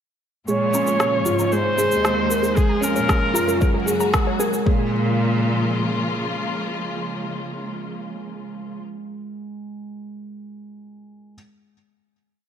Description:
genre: piano and strings electronica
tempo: 115 BPM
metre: 4/4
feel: straight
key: Bb minor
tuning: A4 = 439 Hz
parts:
  - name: warm viola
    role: melody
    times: 0.5-3.9 s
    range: Ab4 to Db5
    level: -22 LUFS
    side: equal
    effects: low-pass filter
  - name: warm symphonic string section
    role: sustained chords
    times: 0.5-8.8 s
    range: C3 to Gb4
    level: -29 LUFS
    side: left 2 dB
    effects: sidechain pumping
  - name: warbly dusty pluck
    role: arpeggios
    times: 0.5-4.9 s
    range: Ab4 to Bb5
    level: -31 LUFS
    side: equal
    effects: chorus, vintage 12-bit sampler grit, sidechain pumping, digital delay
  - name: felt-muted upright piano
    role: riff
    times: 0.5-11.3 s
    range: Ab3 to Bb4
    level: -25 LUFS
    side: right 2 dB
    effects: digital delay
  - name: rich studio cello section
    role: bass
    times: 0.5-6.2 s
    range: Eb2 to Bb2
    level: -25 LUFS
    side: left 1 dB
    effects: sidechain pumping
  - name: electronic shaker and rim click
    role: drums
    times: 0.5-4.6 s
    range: none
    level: -26 LUFS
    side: equal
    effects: high-pass filter on perc, high-pass filter on snare
  - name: electronic kick drum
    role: drums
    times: 2.6-4.8 s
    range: none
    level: -20 LUFS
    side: left 1 dB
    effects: none
room: moderate echo chamber reverb, RT60 2.2 s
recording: none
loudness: -18 LUFS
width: side -8 dB against mid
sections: 0.5-4.7 build; 4.7-8.8 final chord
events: build-up 0.5-4.7; filter sweep on synth arpeggio sound 0.5-4.7; filter sweep on viola 0.5-4.7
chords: 0.5 Bbm7; 1.5 Abadd9; 2.6 Bbm7; 3.6 Gbadd9; 4.7 Bbm7

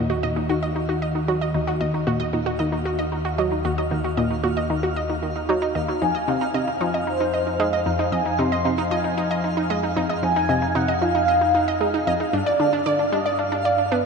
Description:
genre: ambient, sequencer-driven space music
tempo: 114 BPM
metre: 4/4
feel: straight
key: Eb dorian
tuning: A4 = 440 Hz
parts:
  - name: wide unison pluck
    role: arpeggios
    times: 0.0-14.0 s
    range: Eb3 to Eb5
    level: -25 LUFS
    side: right 2 dB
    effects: auto-pan, shimmer reverb, tape echo
  - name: analog pluck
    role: riff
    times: 0.0-14.1 s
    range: Eb2 to B3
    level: -26 LUFS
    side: left 1 dB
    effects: chorus, shimmer reverb, tape echo
  - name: analog drone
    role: bass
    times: 0.0-14.1 s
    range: Eb2 to G2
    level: -29 LUFS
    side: left 1 dB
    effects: chorus
  - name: twinkling granular texture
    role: texture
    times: 0.3-14.1 s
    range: F5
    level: -32 LUFS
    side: right 1 dB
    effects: built-in reverb, shimmer reverb
  - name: mellow horn-like synth lead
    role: melody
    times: 6.0-14.1 s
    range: C5 to C6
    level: -23 LUFS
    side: equal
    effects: phaser, analog chorus, shimmer reverb, tape echo
room: wet huge ambient reverb, RT60 8.4 s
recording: nothing above 10.5 kHz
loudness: -20 LUFS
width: side -5 dB against mid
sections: 0.0-14.1 A section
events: fade-in on synth texture 0.0-14.1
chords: 0.0 Ebm; 6.0 Fm; 12.3 G7

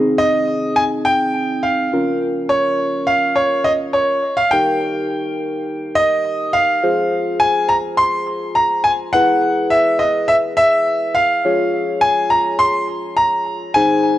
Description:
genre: pop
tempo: 104 BPM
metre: 4/4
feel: straight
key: unclear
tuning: A4 = 440 Hz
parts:
  - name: muted felt-like synth keys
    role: accompaniment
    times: 0.0-14.2 s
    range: C4 to Db5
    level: -20 LUFS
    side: left 1 dB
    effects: chorus
  - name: clear concert grand piano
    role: melody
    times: 0.2-14.2 s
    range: Db5 to C6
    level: -15 LUFS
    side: equal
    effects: tape echo
room: light reverb, small room ambience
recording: dry, gritty hardware recording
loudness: -14 LUFS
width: side -13 dB against mid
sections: 0.0-6.8 A section; 6.8-14.2 B section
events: none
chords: 0.0 Ab/C; 1.9 Bbm; 4.5 Eb; 6.8 Fm; 9.1 E; 11.4 Db

